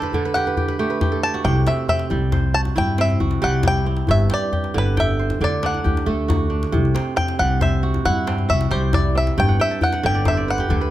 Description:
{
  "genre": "west african traditional, West African string and xylophone music",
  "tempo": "91 BPM (dotted quarters)",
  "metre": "12/8",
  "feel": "straight",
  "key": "C lydian",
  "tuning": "A4 = 440 Hz",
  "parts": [
    { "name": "bluegrass banjo", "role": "melody", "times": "0.0-10.9 s", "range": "A4 to A5", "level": "-22 LUFS", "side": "equal", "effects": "none" },
    { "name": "kora", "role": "arpeggios", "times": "0.0-10.9 s", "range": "G2 to A5", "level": "-23 LUFS", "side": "right 4 dB", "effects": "none" },
    { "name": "djembe", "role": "percussion", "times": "0.0-10.9 s", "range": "none", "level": "-24 LUFS", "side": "left 2 dB", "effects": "none" },
    { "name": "upright bass", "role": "bass", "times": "1.4-10.9 s", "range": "G1 to G2", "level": "-21 LUFS", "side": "left 1 dB", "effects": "none" }
  ],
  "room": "light reverb",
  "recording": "close, detailed microphones",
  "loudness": "-17 LUFS",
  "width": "side -14 dB against mid",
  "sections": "0.0-10.9 A section",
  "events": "kora fill 0.0-1.4, 9.4-10.9; five-string banjo solo 0.0-10.9",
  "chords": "0.1 D; 1.4 C; 4.1 G5; 5.4 D; 6.7 C; 9.4 G5"
}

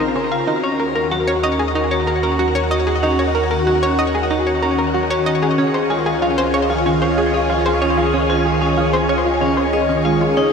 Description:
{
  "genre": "ambient, sequencer-driven space music",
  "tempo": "94 BPM",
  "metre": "4/4",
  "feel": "straight",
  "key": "Eb dorian",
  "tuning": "A4 = 440 Hz",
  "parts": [
    { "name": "phased string machine", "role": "sustained chords", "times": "0.0-10.5 s", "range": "Db3 to Bb4", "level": "-19 LUFS", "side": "right 1 dB", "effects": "ensemble chorus, phaser" },
    { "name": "vibraphone with hard mallets", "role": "arpeggios", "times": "0.0-10.5 s", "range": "Db4 to Eb5", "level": "-20 LUFS", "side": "moving between left 6 dB and right 3 dB", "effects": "auto-pan, ping-pong delay" },
    { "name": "analog pluck", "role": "riff", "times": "0.0-10.5 s", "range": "Db4 to F5", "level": "-20 LUFS", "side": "equal", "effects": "chorus, ping-pong delay" },
    { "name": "warm sub bass", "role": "bass", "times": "0.0-10.5 s", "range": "Bb1 to Eb2", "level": "-26 LUFS", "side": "equal", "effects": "none" },
    { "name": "soft octave-layered synth lead", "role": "melody", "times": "10.1-10.5 s", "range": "Ab4", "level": "-19 LUFS", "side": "left 1 dB", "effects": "chorus, phaser" }
  ],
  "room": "wet shimmer reverb, RT60 7.7 s",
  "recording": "none",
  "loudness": "-15 LUFS",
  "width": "side -6 dB against mid",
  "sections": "0.0-10.5 A section",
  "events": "none",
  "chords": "0.5 Ebm7; 5.6 Dbadd9"
}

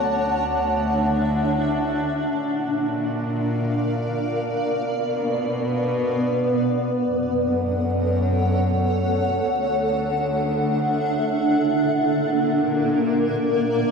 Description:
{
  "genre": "ambient",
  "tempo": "free time",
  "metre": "none",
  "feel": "none",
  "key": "unclear",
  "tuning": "A4 = 440 Hz",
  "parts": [
    { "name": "granular cloud pad", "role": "sustained chords", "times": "0.0-13.9 s", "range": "A#3 to A5", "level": "-21 LUFS", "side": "equal", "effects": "built-in reverb" },
    { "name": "muted felt-like synth keys", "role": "arpeggios", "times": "0.0-1.7 s", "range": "A3", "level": "-38 LUFS", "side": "right 3 dB", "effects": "none" },
    { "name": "warm studio cello section", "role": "bass", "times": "0.0-13.9 s", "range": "D2 to B2", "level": "-27 LUFS", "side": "left 1 dB", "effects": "none" },
    { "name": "hand-pumped harmonium", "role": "drone", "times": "0.0-4.9 s", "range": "D4 to F#4", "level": "-36 LUFS", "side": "left 2 dB", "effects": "stereo widening" }
  ],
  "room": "wet cathedral reverb, RT60 5.1 s",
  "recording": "in a vast, echoing space",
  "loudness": "-20 LUFS",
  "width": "side -5 dB against mid",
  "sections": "0.0-4.8 A section; 4.8-13.9 B section",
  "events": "fade-out on harmonium 0.0-4.8",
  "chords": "0.0 Dadd9; 2.4 A#; 4.8 Bm; 7.1 F#m; 9.5 Dadd9; 11.9 A#"
}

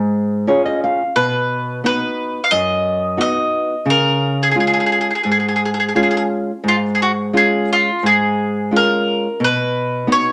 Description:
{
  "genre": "fado-style ballad",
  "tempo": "88 BPM",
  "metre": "4/4",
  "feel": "rubato",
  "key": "unclear",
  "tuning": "A4 = 440 Hz",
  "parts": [
    { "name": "bowl-back mandolin", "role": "melody", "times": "0.0-10.3 s", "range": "E#4 to E#5", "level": "-19 LUFS", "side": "equal", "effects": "none" },
    { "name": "nylon-string guitar", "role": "accompaniment", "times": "0.0-10.3 s", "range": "F#2 to E#5", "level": "-21 LUFS", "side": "equal", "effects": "none" }
  ],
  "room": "wet club reverb, RT60 0.9 s",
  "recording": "none",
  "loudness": "-17 LUFS",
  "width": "mono",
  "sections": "0.0-10.3 A section",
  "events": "nylon-string guitar fill 0.1-1.1",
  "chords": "0.0 C#; 1.1 B; 3.9 C#; 9.4 B"
}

